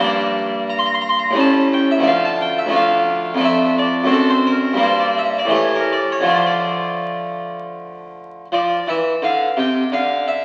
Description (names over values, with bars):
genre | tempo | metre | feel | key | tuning
classical, baroque-style suite movement for harpsichord | 78-90 BPM | 3/4 | rubato | D minor | A4 = 436 Hz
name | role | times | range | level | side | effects
harpsichord | solo | 0.0-10.4 s | D2 to C6 | -18 LUFS | equal | none
room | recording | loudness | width
wet scoring stage reverb, RT60 1.9 s | very old 78 rpm record, vinyl crackle | -18 LUFS | mono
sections
0.0-8.5 A section; 8.5-10.4 B section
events
none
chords
0.0 Gm; 1.4 A7; 2.1 Dm; 3.4 Dm/F; 4.1 D7/F#; 4.8 Gm; 5.5 A5; 6.3 Dm